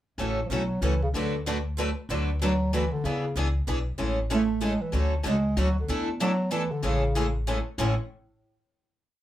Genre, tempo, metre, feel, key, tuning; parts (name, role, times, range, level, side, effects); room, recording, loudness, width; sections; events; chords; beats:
acoustic string swing (jazz manouche); 190 BPM; 3/4; swing 58% on 8ths; A major; A4 = 440 Hz
picked steel-string acoustic guitar; accompaniment; 0.2-7.9 s; A2 to B4; -30 LUFS; left 1 dB
picked steel-string acoustic guitar; accompaniment; 0.2-7.9 s; A2 to B4; -34 LUFS; right 3 dB
upright bass; bass; 0.2-8.0 s; A1 to E2; -29 LUFS; equal
breathy bass clarinet; melody; 0.5-8.0 s; A2 to A3; -27 LUFS; right 1 dB
wet small room ambience, RT60 0.5 s; heard from further back in the room; -24 LUFS; side -13 dB against mid
0.2-7.8 A section; 7.8-8.7 final chord
0.2 A6; 1.1 D6; 3.0 E6; 4.0 Amaj7; 4.9 Dmaj7; 5.9 E7sus4; 6.8 Amaj7
| 0.19 0.51 0.82 | 1.14 1.46 1.77 | 2.09 2.40 2.72 | 3.04 3.35 3.67 | 3.98 4.30 4.61 | 4.93 5.25 5.56 | 5.88 6.19 6.51 | 6.83 7.14 7.46 | 7.78